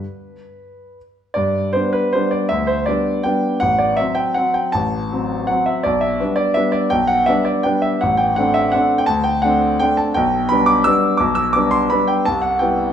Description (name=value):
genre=classical, piano waltz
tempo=142-180 BPM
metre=3/4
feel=rubato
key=G major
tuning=A4 = 438 Hz
part: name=warm grand piano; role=solo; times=0.0-12.9 s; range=A1 to E6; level=-15 LUFS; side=equal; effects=none
room=wet recital hall reverb, RT60 1.5 s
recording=minimal, uncompressed stereo recording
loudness=-15 LUFS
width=side -9 dB against mid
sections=0.0-1.4 A section; 1.4-12.9 A section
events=none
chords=0.0 N.C.; 1.4 G; 3.6 F#dim/A; 5.9 G/B; 8.0 D7/A; 10.2 G/B; 12.3 Cmaj7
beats=| 0.15 0.55 0.96 | 1.36 1.74 2.13 | 2.50 2.87 3.24 | 3.61 3.97 4.36 | 4.73 5.11 5.49 | 5.85 6.20 6.56 | 6.92 7.28 7.66 | 8.03 8.38 8.74 | 9.08 9.43 9.81 | 10.16 10.50 10.85 | 11.19 11.54 11.90 | 12.26 12.60